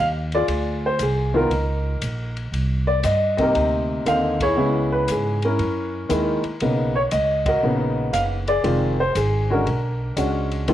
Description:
jazz piano trio; 118 BPM; 4/4; swing 67% on 8ths; A4 = 440 Hz
warm upright piano; melody; 0.0-10.7 s; C3 to F5; -20 LUFS; equal; slapback echo
upright bass; bass; 0.0-10.7 s; F1 to Ab2; -24 LUFS; right 1 dB
open jazz drum kit; drums; 0.3-10.7 s; hi-hat, kick drum, ride cymbal, snare drum; -34 LUFS; left 2 dB
light reverb, small room ambience; 1960s-style stereo; -19 LUFS; side -12 dB against mid
0.0-10.7 A section
band accent 4.3, 7.4
0.5 Dm7b5; 1.5 Dbsus2; 2.5 Cm9; 4.6 Dbm7; 5.6 Gb13; 6.6 Bmaj9; 8.6 Fm7; 9.7 Bm69

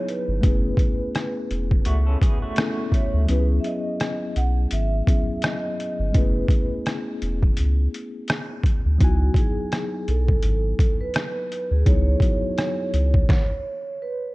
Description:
lo-fi hip hop; 84 BPM; 4/4; swing 57% on 16ths; C# minor; A4 = 440 Hz
vibraphone with medium mallets; melody; 0.0-14.3 s; F#4 to F#5; -30 LUFS; right 3 dB; low-pass filter, tape echo
tine electric piano; accompaniment; 0.0-13.3 s; F#3 to G#5; -29 LUFS; left 3 dB; medium stereo tremolo, cassette tape, low-pass filter
trip hop sampler-style drum kit; drums; 0.1-13.5 s; hi-hat, kick drum, rim click, snare drum; -21 LUFS; equal; overdrive, vintage 12-bit sampler grit
warm sub bass; bass; 0.3-13.2 s; E1 to D2; -21 LUFS; equal
electric guitar through a small old amp; second line; 1.9-3.3 s; A3 to A4; -32 LUFS; right 2 dB; tremolo, low-pass filter, tape echo
digital ambience; echo-heavy mix, cassette tape; -20 LUFS; side -21 dB against mid
0.0-14.3 A section
kick muted 3.3-4.7; stop 13.3-14.3
0.4 F#m11; 3.3 C#m11; 6.1 F#m11 (rootless); 9.0 C#m11

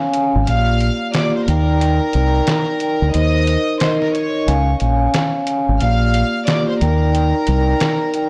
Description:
hip hop, boom-bap hip-hop; 90 BPM; 4/4; swing 62% on 16ths; Bb major; A4 = 440 Hz
vibraphone with soft mallets; accompaniment; 0.0-8.3 s; Bb3 to Ab5; -21 LUFS; equal; high-pass filter, low-pass filter
trip hop sampler-style drum kit; drums; 0.1-8.3 s; handclaps, hi-hat, snare drum; -24 LUFS; equal
deep dub fingered electric bass; bass; 0.4-7.7 s; Ab1 to Eb2; -18 LUFS; equal; tube saturation
warm studio violin section; melody; 0.5-8.3 s; Bb4 to F6; -26 LUFS; equal; high-pass filter, low-pass filter, tape echo
light reverb, small room ambience; blown-out, overdriven recording, overdrive; -17 LUFS; mono
0.5-8.3 A section
kick muted 0.5-8.3
0.5 Bb6; 1.5 Ebmaj7; 3.1 Cm7/Eb; 4.5 Db; 5.8 Bb6; 6.8 Ebmaj7

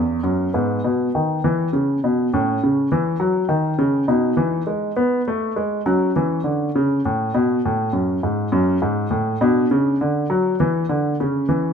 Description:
classical, baroque-style suite movement for grand piano; 67 BPM (dotted quarters); 12/8; rubato; A4 = 440 Hz
dark baby grand piano; solo; 0.0-11.7 s; E2 to D#4; -18 LUFS; equal
wet stone room reverb, RT60 1.5 s; minimal, uncompressed stereo recording; -18 LUFS; side -7 dB against mid
0.0-11.7 A section
0.0 B5; 0.5 E/G#; 2.3 F#m/A; 4.1 B7; 5.9 F#m; 9.4 Bm; 11.2 C#m

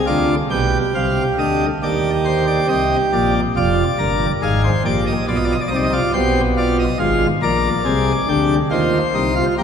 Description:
classical, baroque-style 3-part fugue for pipe organ; 70 BPM; 4/4; straight; A4 = 440 Hz
pipe organ, plenum; solo; 0.0-9.6 s; F1 to G5; -15 LUFS; equal
wet cathedral reverb, RT60 4.0 s; minimal, uncompressed stereo recording; -15 LUFS; side -7 dB against mid
0.1-9.6 A section
0.1 G7; 1.8 Cm/Eb; 3.6 Ddim/F; 5.3 G7/B; 7.0 Fm/Ab; 8.7 Eb

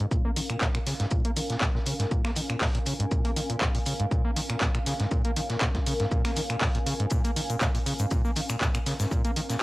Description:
acid house; 120 BPM; 4/4; swing 53% on 16ths; Bb minor; A4 = 440 Hz
overdriven acid bass; riff; 0.0-9.6 s; Ab2 to Bb3; -30 LUFS; equal; distortion, wide subtle chorus, vintage 12-bit sampler grit, sidechain pumping, cassette tape
punchy analog drum machine; drums; 0.0-9.6 s; finger snaps, handclaps, hi-hat; -30 LUFS; equal; cassette tape
granular cloud pad; texture; 0.0-9.6 s; Db4 to Ab5; -35 LUFS; equal; built-in reverb, sidechain pumping, cassette tape
electronic kick drum; drums; 0.1-9.2 s; -27 LUFS; equal; cassette tape
loose indie drum kit; drums; 0.1-9.6 s; hi-hat, shaker, snare drum; -41 LUFS; equal
egg shaker; percussion; 7.1-9.6 s; -43 LUFS; left 7 dB
light reverb; home recording on cassette; -24 LUFS; side -20 dB against mid
0.0-9.6 A section
filter sweep on acid bass 0.0-9.6
0.0 Bbm7

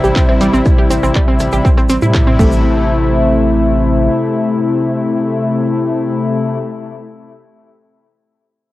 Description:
melodic techno; 121 BPM; 4/4; straight; A minor; A4 = 440 Hz
dark analog pad; sustained chords; 0.0-6.6 s; G3 to E5; -20 LUFS; right 1 dB; chorus, phaser, sidechain pumping, cassette tape
wide unison pluck; arpeggios; 0.0-2.9 s; G3 to G4; -17 LUFS; right 1 dB; sidechain pumping, cassette tape, tape echo
brassy analog pad; stabs; 0.0-6.6 s; C3 to E4; -16 LUFS; left 2 dB; chorus, sidechain pumping, cassette tape, tape echo
round analog bass; bass; 0.0-4.1 s; A1 to A2; -16 LUFS; equal; sidechain pumping
egg shaker; percussion; 0.0-2.6 s; -35 LUFS; right 1 dB
compact cocktail drum kit; drums; 0.2-2.3 s; hi-hat, shaker, snare drum; -36 LUFS; right 1 dB
electronic kick drum; drums; 0.2-2.5 s; -12 LUFS; equal; cassette tape
techno drum kit; drums; 0.2-2.5 s; crash cymbal, handclaps, hi-hat, rim click; -26 LUFS; right 1 dB; cassette tape
light reverb; home recording on cassette; -11 LUFS; side -16 dB against mid
0.0-2.6 A section; 2.6-6.6 B section
drop 0.0-2.6
0.0 C/A; 2.4 Am

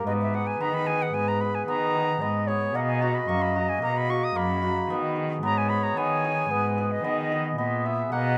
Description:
contemporary instrumental, chamber music in an uneven meter; 112 BPM; 5/4; straight; G# minor; A4 = 440 Hz
mellow clarinet; second line; 0.0-8.4 s; B4 to F#5; -32 LUFS; equal
hammered dulcimer; arpeggios; 0.0-8.4 s; A#3 to G#4; -32 LUFS; equal
muted cello; bass; 0.0-8.4 s; F#2 to D#3; -31 LUFS; equal
bright concert flute; melody; 0.1-8.4 s; D#5 to D#6; -32 LUFS; equal
light reverb; close, detailed microphones; -26 LUFS; mono
0.1-8.4 A section
0.1 G#m; 2.8 Bmaj7; 5.4 G#m

